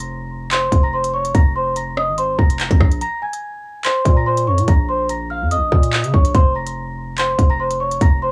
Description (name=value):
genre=hip hop, drill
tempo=144 BPM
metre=4/4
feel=half-time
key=Bb minor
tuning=A4 = 440 Hz
part: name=large celesta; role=melody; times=0.0-8.3 s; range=C5 to Bb6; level=-23 LUFS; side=equal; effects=none
part: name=distorted 808-style bass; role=bass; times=0.0-8.3 s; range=F1 to Db3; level=-25 LUFS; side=equal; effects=distortion
part: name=drill drum kit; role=drums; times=0.0-8.1 s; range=handclaps, hi-hat, kick drum, rim click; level=-17 LUFS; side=equal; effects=none
room=little or no reverb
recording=home recording on cassette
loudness=-17 LUFS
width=mono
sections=0.0-8.3 A section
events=break 3.0-3.8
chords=0.0 Fsus4; 3.0 Bb7(no3); 6.3 Fsus4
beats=0.10 0.51 0.93 | 1.35 1.76 2.18 2.60 | 3.01 3.43 3.85 4.26 | 4.68 5.10 5.51 5.93 | 6.35 6.76 7.18 7.60 | 8.01